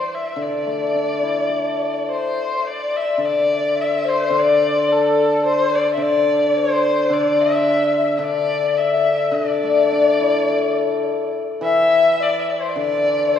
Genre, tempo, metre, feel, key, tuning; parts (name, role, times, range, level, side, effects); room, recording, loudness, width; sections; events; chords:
chinese traditional, Chinese chamber ensemble; 107 BPM; 4/4; straight; A4 = 440 Hz
dark erhu; melody; 0.0-13.4 s; A4 to E5; -21 LUFS; left 2 dB
hammered dulcimer; accompaniment; 0.4-13.4 s; D3 to A4; -20 LUFS; left 2 dB
breathy bright low xiao; second line; 2.1-13.4 s; A4 to E5; -22 LUFS; left 5 dB
wet church reverb, RT60 3.3 s; recorded in a church or concert hall, studio reverb; -16 LUFS; side -9 dB against mid
0.0-2.6 A section; 2.6-11.6 B section; 11.6-13.4 C section